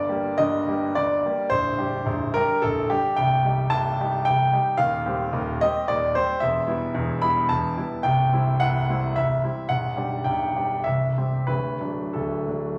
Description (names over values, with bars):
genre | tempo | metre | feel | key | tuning
classical, romantic triple-time dance for piano with dotted rhythms | 89-120 BPM | 3/4 | rubato | unclear | A4 = 440 Hz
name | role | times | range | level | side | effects
clear concert grand piano | solo | 0.0-12.8 s | Bb0 to B5 | -24 LUFS | equal | none
room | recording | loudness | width
wet recital hall reverb, RT60 1.4 s | none | -24 LUFS | mono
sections
0.0-12.8 A section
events
none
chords
0.0 Gm; 1.5 Gm/Bb; 3.2 Cm; 4.8 Cm/Eb; 6.4 Em; 8.0 C; 9.7 G/B; 10.9 C; 11.5 D